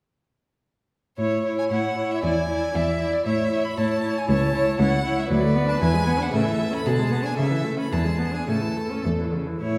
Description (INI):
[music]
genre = quick classical-period movement for string quartet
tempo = 103-119 BPM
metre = 2/4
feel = rubato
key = A major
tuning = A4 = 440 Hz
[part]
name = clear violin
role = melody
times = 1.2-9.8 s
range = C#5 to B5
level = -32 LUFS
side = equal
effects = none
[part]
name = rich violin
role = second line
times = 1.2-9.4 s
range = G#4 to D5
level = -30 LUFS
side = equal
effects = none
[part]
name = rich viola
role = accompaniment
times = 1.2-9.8 s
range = C#3 to E4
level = -30 LUFS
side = equal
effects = none
[part]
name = clear cello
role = bass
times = 1.2-9.8 s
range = C#2 to C#3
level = -27 LUFS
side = equal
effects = none
[sound]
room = wet recital hall reverb, RT60 1.7 s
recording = heard from further back in the room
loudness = -23 LUFS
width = mono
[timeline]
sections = 1.2-9.6 A section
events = none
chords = 1.2 A; 2.2 E7; 3.3 A; 4.3 A/C#; 5.3 Bm7/D; 5.8 E7; 6.3 A; 6.9 G#dim/B; 7.4 A/C#; 7.9 E7; 8.5 A